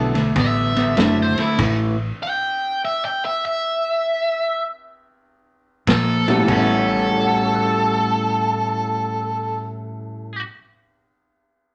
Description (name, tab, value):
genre	electric blues shuffle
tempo	98 BPM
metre	4/4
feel	swing 66% on 8ths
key	A mixolydian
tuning	A4 = 440 Hz
part	clear harmonica	second line	0.0-0.2, 6.5-9.7 s	A4	-26 LUFS	equal	overdrive
part	warm upright piano	accompaniment	0.0-1.6, 6.3-10.7 s	A2 to A6	-26 LUFS	equal	none
part	electric guitar at the edge of break-up	riff	0.0-2.0, 5.9-10.4 s	A2 to F#4	-24 LUFS	equal	none
part	vintage muted fingered electric bass	bass	0.0-2.1, 5.9-10.4 s	F#1 to Bb2	-28 LUFS	equal	none
part	vintage drum kit	drums	0.1-1.8, 5.9-6.7 s	crash cymbal, kick drum, ride cymbal, snare drum	-27 LUFS	equal	none
part	overdriven electric guitar	melody	0.4-10.4 s	E4 to G5	-25 LUFS	equal	none
room	moderate studio reverb, RT60 0.9 s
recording	none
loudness	-20 LUFS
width	mono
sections	0.0-6.5 A section; 6.5-8.9 B section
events	stop 1.6-5.9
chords	0.0 D9; 1.6 A5; 5.9 Bb5; 6.5 A13